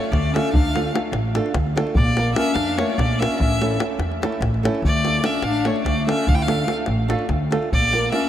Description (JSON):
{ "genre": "balkan folk, Balkan wedding band", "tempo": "293 BPM (eighths)", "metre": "7/8", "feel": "straight", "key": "D harmonic minor", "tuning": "A4 = 444 Hz", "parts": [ { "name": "rich violin", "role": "melody", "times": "0.0-8.3 s", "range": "C#5 to G5", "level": "-25 LUFS", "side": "equal", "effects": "none" }, { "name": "mellow clarinet", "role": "second line", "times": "0.0-8.3 s", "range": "A3 to E4", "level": "-26 LUFS", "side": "left 3 dB", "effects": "none" }, { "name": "flamenco guitar", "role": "accompaniment", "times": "0.0-8.3 s", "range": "A3 to Bb4", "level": "-25 LUFS", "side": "right 3 dB", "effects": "none" }, { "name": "davul", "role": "percussion", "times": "0.0-8.2 s", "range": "none", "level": "-24 LUFS", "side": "left 1 dB", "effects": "none" }, { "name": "upright bass", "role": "bass", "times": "0.1-8.1 s", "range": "A1 to F2", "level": "-24 LUFS", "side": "equal", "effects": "none" } ], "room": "moderate cathedral reverb, RT60 6.6 s", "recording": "in a vast, echoing space", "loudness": "-18 LUFS", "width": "side -11 dB against mid", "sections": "0.0-8.3 A section", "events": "none", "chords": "0.0 Dm; 2.0 Bb; 3.4 A; 4.8 Dm; 7.7 Bb" }